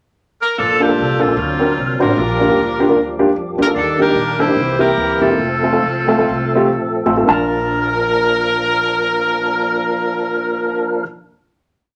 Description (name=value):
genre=uptempo gospel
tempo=113-151 BPM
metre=4/4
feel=swing 58% on 8ths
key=Bb major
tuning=A4 = 440 Hz
part: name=bright saxophone section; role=melody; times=0.4-11.0 s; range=Bb3 to C5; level=-21 LUFS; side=equal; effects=none
part: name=dark upright piano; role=accompaniment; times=0.6-11.0 s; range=Bb1 to A5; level=-18 LUFS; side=equal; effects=none
part: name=dark French horn section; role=sustained chords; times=0.6-11.0 s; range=none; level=barely audible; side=none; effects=none
part: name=percussive tonewheel organ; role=sustained chords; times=0.6-11.1 s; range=Eb3 to A#4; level=-23 LUFS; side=equal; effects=slow rotary speaker, overdrive, chorus vibrato
part: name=upright bass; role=bass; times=0.6-11.0 s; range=E1 to F2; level=-29 LUFS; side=equal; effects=none
room=moderate club reverb, RT60 0.6 s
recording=none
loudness=-16 LUFS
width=mono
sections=0.0-0.6 pickup bar; 0.6-7.3 breakdown; 7.3-11.5 final chord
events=slowing down 3.8-7.3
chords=0.0 N.C.; 0.6 Bbmaj7; 1.4 D7alt; 2.2 Gm7/Bb; 3.8 Ebmaj7; 4.6 C7; 5.4 F; 7.3 Bbmaj7